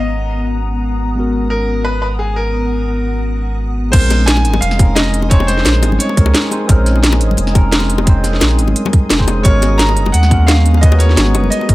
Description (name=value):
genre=liquid drum and bass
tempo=174 BPM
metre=4/4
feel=straight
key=Bb phrygian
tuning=A4 = 440 Hz
part: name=bright concert grand piano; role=melody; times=0.0-6.5, 9.4-11.7 s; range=Ab4 to Bb5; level=-20 LUFS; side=equal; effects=digital delay
part: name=bright tine electric piano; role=accompaniment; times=0.0-11.7 s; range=Ab3 to C5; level=-20 LUFS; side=equal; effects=phaser, digital delay
part: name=glassy FM pad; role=sustained chords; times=0.0-11.7 s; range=Cb4 to Eb6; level=-24 LUFS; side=left 3 dB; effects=ensemble chorus, built-in reverb, phaser, sidechain pumping
part: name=warm sub bass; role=bass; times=0.0-11.7 s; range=F1 to Eb2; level=-14 LUFS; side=equal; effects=none
part: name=electronic kick drum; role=drums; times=3.9-11.7 s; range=none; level=-11 LUFS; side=equal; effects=none
part: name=garage drum kit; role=drums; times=3.9-11.7 s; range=crash cymbal, hi-hat, snare drum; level=-17 LUFS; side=equal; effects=none
part: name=bongos and congas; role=percussion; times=3.9-11.7 s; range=none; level=-23 LUFS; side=left 5 dB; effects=none
room=digital ambience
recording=none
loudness=-11 LUFS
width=side -18 dB against mid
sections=0.0-3.9 A section; 3.9-11.7 B section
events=drop 3.9-11.7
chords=0.0 Abm11; 3.9 Bbm11; 9.4 Abm11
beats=0.14 0.48 0.83 | 1.17 1.52 1.86 2.21 | 2.55 2.90 3.24 3.59 | 3.93 4.28 4.62 4.97 | 5.31 5.66 6.00 6.34 | 6.69 7.04 7.38 7.72 | 8.07 8.41 8.76 9.10 | 9.45 9.79 10.14 10.48 | 10.83 11.17 11.52